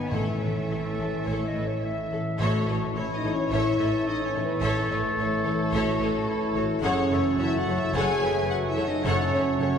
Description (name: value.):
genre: cinematic.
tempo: 108 BPM.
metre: 4/4.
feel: straight.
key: A lydian.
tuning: A4 = 436 Hz.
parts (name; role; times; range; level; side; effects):
warm symphonic violin section; melody; 0.0-9.8 s; A4 to G#5; -35 LUFS; left 3 dB; none.
mellow French horn section; sustained chords; 0.0-9.8 s; A3 to C#5; -29 LUFS; equal; none.
concert harp; arpeggios; 0.0-9.8 s; F#2 to G#4; -32 LUFS; left 2 dB; none.
rich symphonic cello section; bass; 0.0-9.7 s; F#2 to B3; -36 LUFS; right 1 dB; none.
clear symphonic violin section; second line; 0.1-9.7 s; A4 to F#5; -35 LUFS; left 3 dB; none.
rich symphonic viola section; accompaniment; 0.1-9.7 s; A4 to C#5; -34 LUFS; right 1 dB; none.
warm trombone section; sustained chords; 0.1-9.8 s; E3 to C#4; -36 LUFS; right 2 dB; none.
rich symphonic double bass section; bass; 0.1-9.7 s; F#1 to A1; -33 LUFS; right 2 dB; none.
timpani; percussion; 0.1-3.2 s; A2; -34 LUFS; equal; none.
warm clarinet; second line; 0.7-9.8 s; E4 to E5; -34 LUFS; left 1 dB; none.
clear trumpet section; stabs; 2.4-9.8 s; C#5; -33 LUFS; equal; none.
room: wet church reverb, RT60 2.7 s.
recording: recorded in a church or concert hall.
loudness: -23 LUFS.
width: side -7 dB against mid.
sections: 0.0-2.4 A section; 2.4-9.8 A section.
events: none.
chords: 0.1 A; 6.8 F#m.